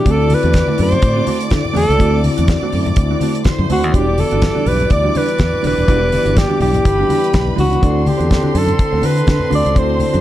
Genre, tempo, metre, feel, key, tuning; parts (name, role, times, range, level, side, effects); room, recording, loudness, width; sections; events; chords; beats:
disco; 124 BPM; 4/4; swing 56% on 16ths; A4 = 439 Hz
breathy alto saxophone; melody; 0.0-10.2 s; F#4 to D5; -18 LUFS; equal
rich studio violin section; second line; 0.0-10.2 s; C4 to D6; -25 LUFS; right 1 dB
mellow electric guitar; accompaniment; 0.0-10.2 s; G3 to D5; -24 LUFS; right 9 dB
mellow tine electric piano; accompaniment; 0.0-10.2 s; D3 to D5; -23 LUFS; left 5 dB; fast stereo tremolo
mellow French horn section; sustained chords; 0.0-10.2 s; D3 to A4; -26 LUFS; left 3 dB
fingered electric bass; bass; 0.1-10.2 s; D#1 to D3; -18 LUFS; equal
damped 70s drum kit; drums; 0.1-10.2 s; hi-hat, kick drum, snare drum; -18 LUFS; equal
congas; percussion; 0.3-10.1 s; -24 LUFS; left 2 dB
little or no reverb; dark, warm production; -12 LUFS; side -13 dB against mid
0.0-10.2 A section
0.1 D7; 3.9 Em9; 7.8 D7
| 0.06 0.55 1.03 1.52 | 2.00 2.49 2.97 3.46 | 3.94 4.43 4.91 5.40 | 5.88 6.37 6.86 7.34 | 7.82 8.31 8.79 9.28 | 9.76